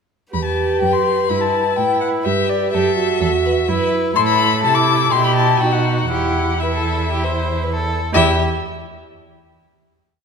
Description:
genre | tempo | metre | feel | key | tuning
quick classical-period movement for string quartet | 117-126 BPM | 4/4 | straight | E minor | A4 = 438 Hz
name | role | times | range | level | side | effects
rich violin | melody | 0.3-8.4 s | D5 to D6 | -19 LUFS | left 8 dB | none
warm violin | second line | 0.3-8.4 s | F#4 to C5 | -22 LUFS | left 1 dB | none
warm viola | accompaniment | 0.3-8.4 s | D#4 to G4 | -21 LUFS | right 4 dB | none
rich cello | bass | 0.3-8.4 s | E2 to C3 | -22 LUFS | right 3 dB | none
room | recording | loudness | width
wet scoring stage reverb, RT60 1.9 s | minimal, uncompressed stereo recording | -15 LUFS | side -6 dB against mid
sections
0.3-8.1 theme; 8.1-10.1 final chord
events
none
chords
0.3 Em; 4.2 Am; 5.1 Em/B; 5.6 B; 6.1 Em; 8.1 N.C.

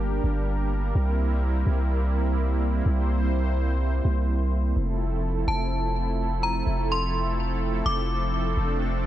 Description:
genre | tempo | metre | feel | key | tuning
hip hop, atmospheric cloud-rap | 126 BPM | 4/4 | half-time | F major | A4 = 441 Hz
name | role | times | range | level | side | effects
warm analog pad | sustained chords | 0.0-9.1 s | F3 to C5 | -29 LUFS | right 1 dB | chorus, tremolo
long sustained 808-style bass | bass | 0.0-9.1 s | F1 to C2 | -24 LUFS | equal | none
metallic FM bell | melody | 5.5-8.5 s | A5 to D6 | -29 LUFS | left 2 dB | chorus, low-pass filter, ping-pong delay
room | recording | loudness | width
little or no reverb | dark, warm production | -23 LUFS | side -13 dB against mid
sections
0.0-4.8 A section; 4.8-9.1 B section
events
none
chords
0.0 Gm; 1.0 C7; 4.8 Fmaj7

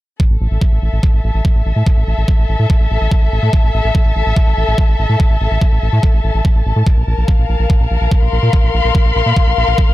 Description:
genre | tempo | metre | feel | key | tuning
psychedelic trance | 144 BPM | 4/4 | straight | A phrygian | A4 = 439 Hz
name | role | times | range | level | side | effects
electronic kick drum | drums | 0.2-9.9 s | none | -12 LUFS | equal | none
muted studio string section | texture | 0.2-9.9 s | A4 to C6 | -19 LUFS | left 4 dB | sidechain pumping
round analog bass | bass | 0.3-9.9 s | A1 to Bb2 | -14 LUFS | equal | none
room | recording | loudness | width
little or no reverb | none | -11 LUFS | side -16 dB against mid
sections
0.2-9.9 A section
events
none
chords
0.2 A5; 6.9 Bb5

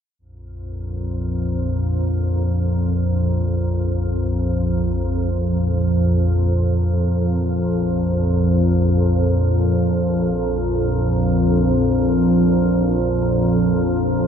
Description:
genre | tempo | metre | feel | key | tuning
dark ambient drone | free time | none | none | unclear | A4 = 440 Hz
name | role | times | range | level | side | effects
organ-like drone | solo | 0.6-14.3 s | Bb1 to F2 | -17 LUFS | equal | ensemble chorus, built-in reverb, ping-pong delay
room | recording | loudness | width
wet huge ambient reverb, RT60 8.9 s | in a vast, echoing space | -17 LUFS | side -8 dB against mid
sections
0.2-14.3 A section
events
none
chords
0.2 Bb5

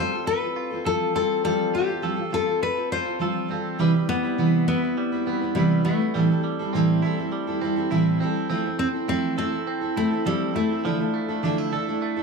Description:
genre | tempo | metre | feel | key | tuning
acoustic pop | 102 BPM | 4/4 | straight | unclear | A4 = 440 Hz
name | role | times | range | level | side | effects
nylon-string guitar | melody | 0.0-12.2 s | G3 to C5 | -26 LUFS | left 5 dB | plate reverb
fingerpicked steel-string acoustic guitar | accompaniment | 0.0-12.2 s | A2 to B4 | -24 LUFS | right 2 dB | plate reverb
direct-recorded clean electric guitar | arpeggios | 0.0-12.2 s | F3 to A4 | -31 LUFS | right 8 dB | plate reverb
room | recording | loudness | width
wet studio reverb, RT60 0.6 s | none | -21 LUFS | side -4 dB against mid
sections
0.0-3.8 A section; 3.8-12.2 B section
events
none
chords
0.0 Fadd9; 3.8 Cmaj7; 6.1 Am7; 8.5 Fmaj7; 10.8 Dmadd9

